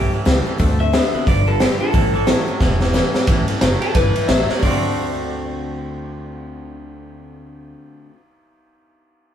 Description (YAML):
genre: rockabilly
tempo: 178 BPM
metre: 4/4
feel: swing 61% on 8ths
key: D mixolydian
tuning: A4 = 437 Hz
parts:
  - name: electric guitar through a small old amp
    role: melody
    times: 0.0-7.7 s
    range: G4 to E5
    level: -22 LUFS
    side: left 2 dB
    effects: none
  - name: picked steel-string acoustic guitar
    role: accompaniment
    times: 0.0-8.2 s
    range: A2 to B4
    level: -27 LUFS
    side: left 5 dB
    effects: none
  - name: twangy electric guitar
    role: riff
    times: 0.0-8.2 s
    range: G2 to F#4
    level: -26 LUFS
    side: right 4 dB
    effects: none
  - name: upright bass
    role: bass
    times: 0.0-7.7 s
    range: E1 to D2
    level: -23 LUFS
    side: equal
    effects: none
  - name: raw garage drum kit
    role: drums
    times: 0.3-4.7 s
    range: hi-hat, kick drum, ride cymbal, snare drum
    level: -18 LUFS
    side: equal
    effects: none
room: light reverb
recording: band playing live in one room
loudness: -15 LUFS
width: side -9 dB against mid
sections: 0.0-3.3 A section; 3.3-4.6 B section; 4.6-7.3 C section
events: drum fill 2.6-3.3, 4.5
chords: 0.0 A7; 0.6 D7; 1.3 G7; 1.9 A7; 4.6 D7